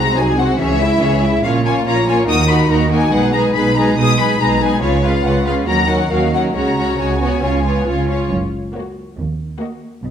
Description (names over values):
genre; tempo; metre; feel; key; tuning
quick classical-period movement for string orchestra; 141 BPM; 4/4; straight; unclear; A4 = 440 Hz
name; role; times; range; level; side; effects
rich symphonic violin section; melody; 0.0-9.9 s; C#5 to D#6; -20 LUFS; left 4 dB; none
clear studio violin section; second line; 0.0-9.9 s; E4 to E5; -20 LUFS; left 2 dB; none
warm symphonic viola section; accompaniment; 0.0-9.9 s; E3 to E#4; -20 LUFS; right 1 dB; none
warm symphonic cello section; bass; 0.0-10.1 s; D#2 to D#3; -21 LUFS; right 3 dB; none
warm symphonic double bass section; bass; 0.0-10.1 s; F#1 to D#2; -20 LUFS; right 2 dB; none
room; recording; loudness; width
wet recital hall reverb, RT60 1.4 s; none; -13 LUFS; side -8 dB against mid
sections
0.0-8.3 A section; 8.3-10.1 B section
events
none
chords
0.0 G#7/B#; 0.6 C#m; 1.4 A#m; 2.3 D#m; 3.1 G#m/B; 4.8 C#7; 5.7 D#m7; 6.6 C#sus4; 7.4 C#; 8.3 F#; 9.2 D#m